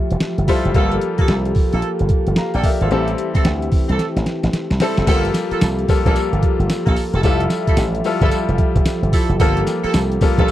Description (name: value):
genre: R&B, new jack swing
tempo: 111 BPM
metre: 4/4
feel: swing 63% on 16ths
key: G dorian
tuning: A4 = 440 Hz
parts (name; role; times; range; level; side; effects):
- bright concert grand piano; accompaniment; 0.0-10.5 s; G3 to Bb5; -22 LUFS; left 5 dB; none
- warm brass ensemble; sustained chords; 0.0-10.5 s; E3 to E5; -24 LUFS; right 1 dB; stereo widening
- slap bass with an envelope filter; bass; 0.1-10.5 s; E1 to D2; -20 LUFS; equal; none
- boom bap sampler-style drum kit; drums; 0.1-10.5 s; crash cymbal, hi-hat, kick drum, snare drum, tambourine; -18 LUFS; equal; none
- warm horn section; stabs; 0.5-10.5 s; Bb3 to A4; -23 LUFS; right 4 dB; none
room: little or no reverb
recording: dry, close 1970s-style studio recording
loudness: -15 LUFS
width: side -13 dB against mid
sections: 0.0-5.1 A section; 5.1-10.5 B section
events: drum fill 4.0-5.1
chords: 0.0 Fmaj9; 0.7 Gm9; 2.9 Am7; 5.1 Gm9; 7.2 Fmaj9; 9.4 Gm9